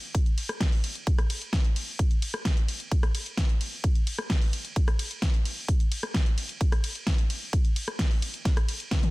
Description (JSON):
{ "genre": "EDM", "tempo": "130 BPM", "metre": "4/4", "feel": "straight", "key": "none", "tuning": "none", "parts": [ { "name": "big-room dance drum kit", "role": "drums", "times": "0.1-9.1 s", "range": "hi-hat, ride cymbal, rim click, snare drum, toms", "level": "-32 LUFS", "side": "equal", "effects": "none" }, { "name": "electronic kick drum", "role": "drums", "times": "0.1-9.0 s", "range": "none", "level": "-24 LUFS", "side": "equal", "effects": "none" } ], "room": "little or no reverb", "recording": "dense, heavily limited modern master", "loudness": "-24 LUFS", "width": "side -21 dB against mid", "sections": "0.0-9.1 A section", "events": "drum fill 8.9", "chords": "none" }